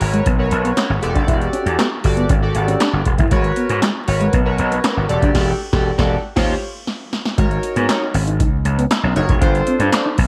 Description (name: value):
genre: early-eighties boogie funk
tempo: 118 BPM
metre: 4/4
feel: straight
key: unclear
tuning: A4 = 437 Hz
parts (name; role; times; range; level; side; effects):
- chorused polysynth; accompaniment; 0.0-10.1 s; D4 to D5; -24 LUFS; equal; none
- mellow electric guitar; riff; 0.0-10.2 s; G#3 to E4; -26 LUFS; equal; lush chorus
- gritty slap bass; bass; 0.0-10.3 s; E1 to G#2; -21 LUFS; equal; overdrive
- electro analog drum machine; drums; 0.0-10.3 s; crash cymbal, handclaps, hi-hat, kick drum, snare drum; -22 LUFS; equal; gated reverb
room: light reverb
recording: vinyl crackle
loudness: -17 LUFS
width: mono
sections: 0.0-7.4 A section; 7.4-10.3 B section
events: band accent 5.3-7.4; drum fill 6.9-7.4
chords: 0.0 G#m11; 1.0 Em11; 3.3 G#m11; 5.1 Em11; 6.4 D#13; 7.4 G#9sus4; 9.4 G9sus4